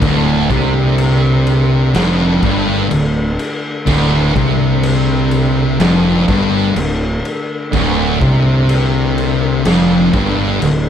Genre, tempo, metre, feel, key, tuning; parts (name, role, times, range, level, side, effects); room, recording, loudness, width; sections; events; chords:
stoner and doom metal; 62 BPM; 4/4; straight; D minor; A4 = 441 Hz
tonewheel organ; sustained chords; 0.0-10.9 s; D3 to D4; -25 LUFS; left 1 dB
sludgy distorted guitar; riff; 0.0-10.9 s; D2 to C3; -19 LUFS; equal; overdrive
thick fuzz guitar; riff; 0.0-10.9 s; D2 to C3; -17 LUFS; left 6 dB; distortion
thick fuzz guitar; riff; 0.0-10.9 s; D2 to C3; -18 LUFS; right 8 dB; distortion
fuzz fingered electric bass; bass; 0.0-10.9 s; D1 to C2; -20 LUFS; equal; overdrive
raw garage drum kit; drums; 0.0-10.8 s; crash cymbal, kick drum, snare drum; -20 LUFS; left 1 dB
small room ambience; -12 LUFS; side -9 dB against mid
0.0-10.9 A section
0.0 Dm